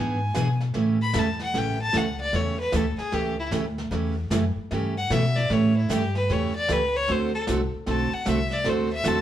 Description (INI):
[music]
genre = country, western swing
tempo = 152 BPM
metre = 4/4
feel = swing 65% on 8ths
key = A mixolydian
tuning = A4 = 441 Hz
[part]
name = clear clarinet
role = second line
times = 0.0-0.6 s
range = G#5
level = -32 LUFS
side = right 2 dB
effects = none
[part]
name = picked steel-string acoustic guitar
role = accompaniment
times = 0.0-9.2 s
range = C#3 to A4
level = -27 LUFS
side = right 3 dB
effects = none
[part]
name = upright bass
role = bass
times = 0.0-9.2 s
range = A1 to B2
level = -27 LUFS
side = equal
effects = none
[part]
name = jazz brush drum kit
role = drums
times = 0.3-9.2 s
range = brushed snare drum, hi-hat, snare drum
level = -34 LUFS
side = left 1 dB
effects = none
[part]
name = clear fiddle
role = melody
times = 1.0-9.2 s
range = E4 to B5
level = -27 LUFS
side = left 2 dB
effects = none
[sound]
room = wet studio reverb, RT60 0.8 s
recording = band playing live in one room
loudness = -22 LUFS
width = side -11 dB against mid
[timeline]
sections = 0.8-9.2 A section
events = fiddle solo 0.8-9.2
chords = 0.0 E7; 0.8 A7; 7.1 D7